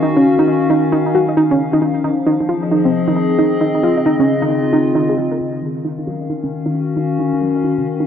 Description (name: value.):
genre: IDM.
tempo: 134 BPM.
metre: 4/4.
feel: swing 62% on 16ths.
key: Eb dorian.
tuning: A4 = 440 Hz.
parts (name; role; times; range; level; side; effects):
warbly tape-like pad; sustained chords; 0.0-8.1 s; Db3 to F5; -17 LUFS; left 3 dB; chorus, built-in reverb.
warbly dusty pluck; arpeggios; 0.0-8.1 s; C4 to Eb5; -16 LUFS; right 1 dB; chorus, dub echo.
room: moderate lush hall reverb, RT60 3.0 s.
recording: dark, warm production.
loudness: -14 LUFS.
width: side -8 dB against mid.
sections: 0.0-5.4 A section; 5.4-8.1 B section.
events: none.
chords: 0.0 Ebm9; 1.8 Fm7; 3.6 Dbmaj9; 5.4 Ebm9.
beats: | 0.03 0.47 0.92 1.37 | 1.82 2.27 2.71 3.16 | 3.61 4.06 4.50 4.95 | 5.40 5.85 6.30 6.74 | 7.19 7.64.